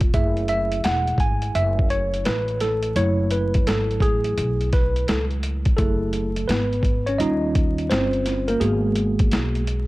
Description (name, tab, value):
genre	hip hop, jazz-hop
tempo	85 BPM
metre	4/4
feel	swing 65% on 16ths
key	F# dorian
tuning	A4 = 440 Hz
part	tine electric piano	accompaniment	0.0-9.9 s	F#3 to G#5	-23 LUFS	right 1 dB	medium stereo tremolo
part	upright bass	bass	0.0-9.9 s	E1 to D#2	-25 LUFS	equal	none
part	boom bap sampler-style drum kit	drums	0.0-9.9 s	hi-hat, kick drum, snare drum	-23 LUFS	equal	overdrive
room	light reverb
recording	dark, warm production, vinyl crackle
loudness	-19 LUFS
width	side -19 dB against mid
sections	0.0-5.8 A section; 5.8-9.9 B section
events	tine electric piano solo 0.0-5.8, 5.8-9.9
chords	0.1 F#m9; 7.2 D#7; 8.6 G#m7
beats	| 0.14 0.85 1.55 2.26 | 2.96 3.67 4.38 5.08 | 5.79 6.49 7.20 7.91 | 8.61 9.32